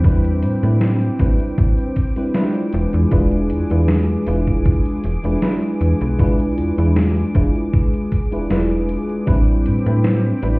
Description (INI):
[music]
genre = vaporwave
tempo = 78 BPM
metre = 4/4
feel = straight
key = A minor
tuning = A4 = 440 Hz
[part]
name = FM electric piano with soft pad layer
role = accompaniment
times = 0.0-10.6 s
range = G3 to B4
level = -20 LUFS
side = equal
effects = lush chorus, analog delay
[part]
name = lush unison pad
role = sustained chords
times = 0.0-10.6 s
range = C4 to D6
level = -30 LUFS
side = equal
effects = chorus
[part]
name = slap-like FM bass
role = bass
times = 0.0-10.6 s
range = E1 to A2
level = -18 LUFS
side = equal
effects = tube saturation
[part]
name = electronic kick drum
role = drums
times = 0.0-9.4 s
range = none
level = -16 LUFS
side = equal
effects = none
[part]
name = gated 80s digital drum machine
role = drums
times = 0.0-10.6 s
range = hi-hat, snare drum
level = -22 LUFS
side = equal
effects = gated reverb, gated reverb snare
[sound]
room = digital ambience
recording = heard muffled through a wall, cassette tape, stone room reverb, EQ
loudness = -15 LUFS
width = side -24 dB against mid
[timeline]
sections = 0.0-10.6 A section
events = none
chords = 0.0 Am11; 2.7 E7b9; 9.3 Am11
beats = | 0.04 0.81 1.58 2.35 | 3.12 3.89 4.66 5.43 | 6.20 6.96 7.73 8.50 | 9.27 10.04